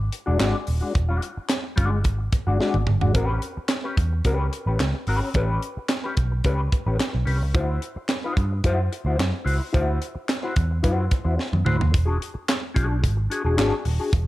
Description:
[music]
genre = funk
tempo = 109 BPM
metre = 4/4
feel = straight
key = E mixolydian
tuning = A4 = 439 Hz
[part]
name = mellow electric guitar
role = accompaniment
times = 0.0-14.2 s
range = G#3 to C5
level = -27 LUFS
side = left 3 dB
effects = wah, spring reverb
[part]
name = vintage muted picked electric bass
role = bass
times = 0.0-14.3 s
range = D#1 to G2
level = -23 LUFS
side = equal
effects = none
[part]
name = tight funk drum kit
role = drums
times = 0.1-14.3 s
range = handclaps, hi-hat, kick drum, snare drum, toms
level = -24 LUFS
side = right 1 dB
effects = none
[sound]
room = small room ambience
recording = none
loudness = -21 LUFS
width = side -17 dB against mid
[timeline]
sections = 0.0-3.1 A section; 3.1-11.9 B section; 11.9-14.3 A section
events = drum fill 2.6-3.1, 11.4-11.9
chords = 0.0 E9 (rootless); 3.1 A9; 7.5 D9; 11.9 E9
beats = 0.40 | 0.95 1.50 2.05 2.60 | 3.15 3.70 4.25 4.80 | 5.35 5.90 6.45 7.00 | 7.55 8.10 8.65 9.20 | 9.75 10.29 10.84 11.39 | 11.94 12.49 13.04 13.58 | 14.13

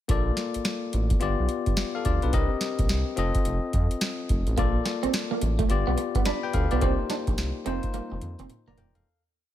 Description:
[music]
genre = R&B, new jack swing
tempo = 107 BPM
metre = 4/4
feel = swing 62% on 16ths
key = Bb major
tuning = A4 = 440 Hz
[part]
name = bell-like tine electric piano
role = accompaniment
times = 0.1-9.2 s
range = A3 to B5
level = -29 LUFS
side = left 6 dB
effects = none
[part]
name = smooth synth bass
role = bass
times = 0.1-9.0 s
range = Eb1 to F2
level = -27 LUFS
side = equal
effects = none
[part]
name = booming analog drum machine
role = drums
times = 0.1-9.1 s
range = hi-hat, kick drum, snare drum, toms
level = -27 LUFS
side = equal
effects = none
[part]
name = electric guitar at the edge of break-up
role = riff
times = 4.6-8.9 s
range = A3 to D4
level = -30 LUFS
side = right 8 dB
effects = lush chorus
[sound]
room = little or no reverb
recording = none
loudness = -23 LUFS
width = side -12 dB against mid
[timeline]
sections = 0.1-9.1 verse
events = fade-out 6.8-9.1; drum fill 7.9-9.1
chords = 0.1 Bbmaj7; 1.2 G7; 2.3 Cm7; 3.2 F7; 4.6 Bbmaj7; 5.7 G7; 6.8 Cm7; 7.7 F7sus4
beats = | 0.09 0.65 1.21 1.77 | 2.33 2.89 3.46 4.01 | 4.58 5.14 5.70 6.26 | 6.82 7.38 7.94 8.50

